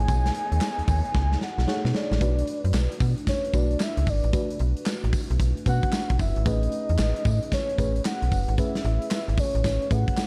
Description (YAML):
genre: R&B, new jack swing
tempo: 113 BPM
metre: 4/4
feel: swing 64% on 16ths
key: unclear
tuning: A4 = 440 Hz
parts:
  - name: soft octave-layered synth lead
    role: melody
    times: 0.0-10.3 s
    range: C#5 to G#5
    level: -33 LUFS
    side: equal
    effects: chorus, tremolo
  - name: FM electric piano with soft pad layer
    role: accompaniment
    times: 0.0-10.3 s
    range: A3 to C#5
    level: -35 LUFS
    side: equal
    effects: chorus, tremolo
  - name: warm studio string section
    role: sustained chords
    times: 0.0-2.2 s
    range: A3 to D#4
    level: -43 LUFS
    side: equal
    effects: none
  - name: slap-like FM bass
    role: bass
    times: 0.0-10.1 s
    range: F#1 to B2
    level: -26 LUFS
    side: equal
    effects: none
  - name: big rock drum kit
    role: drums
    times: 0.1-10.3 s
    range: handclaps, hi-hat, kick drum, snare drum, tambourine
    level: -30 LUFS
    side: equal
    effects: none
room: studio reverb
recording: dark, warm production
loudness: -25 LUFS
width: mono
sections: 0.0-2.2 A section; 2.2-10.3 B section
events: drum fill 1.1-2.2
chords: 0.0 B13; 2.2 Bm7; 6.5 Amaj9